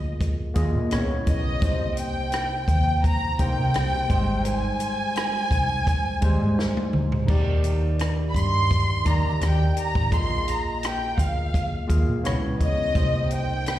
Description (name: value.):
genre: lush 1970s-style soul.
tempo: 85 BPM.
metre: 4/4.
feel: swing 54% on 16ths.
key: Eb major.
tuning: A4 = 440 Hz.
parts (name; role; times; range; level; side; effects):
warm studio violin section; melody; 0.0-13.8 s; Eb5 to C6; -27 LUFS; equal; plate reverb, slapback echo.
overdriven tine electric piano; accompaniment; 0.0-13.8 s; C3 to F5; -28 LUFS; equal; analog chorus, slapback echo.
vintage muted fingered electric bass; bass; 0.0-13.8 s; Ab1 to C3; -24 LUFS; equal; none.
compact cocktail drum kit; drums; 0.2-13.8 s; crash cymbal, hi-hat, kick drum, rim click, snare drum, toms; -26 LUFS; equal; none.
room: light reverb.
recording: live gig heard through the venue's PA, recital hall reverb.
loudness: -21 LUFS.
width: side -13 dB against mid.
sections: 0.0-13.8 A section.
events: drum fill 6.6-7.3.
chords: 0.0 Bb7sus4; 0.9 Dbm7; 1.6 Cm7; 4.1 Abmaj7; 7.3 Ebmaj7; 10.1 Bb7sus4; 12.2 Dbm7; 12.9 Cm7.